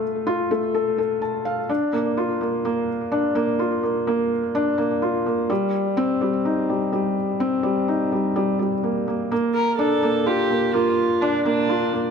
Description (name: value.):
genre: electronica.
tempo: 126 BPM.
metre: 4/4.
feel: straight.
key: Bb major.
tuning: A4 = 440 Hz.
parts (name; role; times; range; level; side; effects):
felt-muted upright piano; riff; 0.0-12.1 s; G3 to A5; -20 LUFS; equal; tape echo.
dark viola; melody; 9.5-12.1 s; D4 to Bb4; -21 LUFS; right 1 dB; tape echo.
room: wet echo chamber reverb, RT60 2.2 s.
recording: none.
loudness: -20 LUFS.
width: side -6 dB against mid.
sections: 0.0-12.1 A section.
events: none.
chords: 0.0 F; 1.7 Bb; 5.5 Cm7; 9.3 Bb.